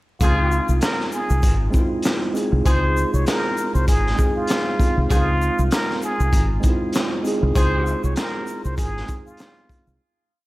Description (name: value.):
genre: hip hop, boom-bap hip-hop.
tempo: 98 BPM.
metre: 4/4.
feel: swing 57% on 16ths.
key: Db major.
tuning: A4 = 438 Hz.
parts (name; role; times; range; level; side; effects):
trumpet with plunger mute; melody; 0.2-10.0 s; F4 to Db5; -26 LUFS; equal; high-pass filter, low-pass filter, tape echo.
mellow tine electric piano; accompaniment; 0.2-10.0 s; Ab3 to Ab4; -25 LUFS; right 1 dB; medium stereo tremolo, cassette tape, high-pass filter, low-pass filter.
mellow saxophone section; stabs; 0.2-8.0 s; F3 to Ab4; -33 LUFS; left 1 dB; high-pass filter, low-pass filter, tape echo.
deep dub fingered electric bass; bass; 0.2-10.0 s; Ab1 to Db2; -20 LUFS; equal; none.
crunchy breakbeat drum kit; drums; 0.2-9.9 s; handclaps, hi-hat, kick drum, shaker, snare drum; -22 LUFS; equal; none.
egg shaker; percussion; 0.2-10.0 s; none; -42 LUFS; left 6 dB; none.
room: light reverb.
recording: vinyl crackle.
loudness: -18 LUFS.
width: side -19 dB against mid.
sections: 0.2-10.0 hook.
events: fade-out 7.6-10.0.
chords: 0.2 Dbmaj9.